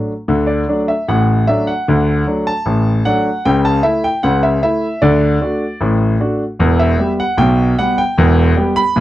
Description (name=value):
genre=ragtime piano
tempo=76 BPM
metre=2/4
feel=straight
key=D major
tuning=A4 = 440 Hz
part: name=warm grand piano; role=solo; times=0.0-9.0 s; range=E1 to B5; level=-12 LUFS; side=equal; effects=none
room=light reverb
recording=dry, close 1970s-style studio recording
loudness=-12 LUFS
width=side -14 dB against mid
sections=0.3-9.0 A section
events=none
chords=0.3 D; 3.5 A/C#; 5.0 D; 6.6 Em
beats=| 0.30 1.09 | 1.88 2.67 | 3.46 4.25 | 5.03 5.82 | 6.61 7.40 | 8.19 8.97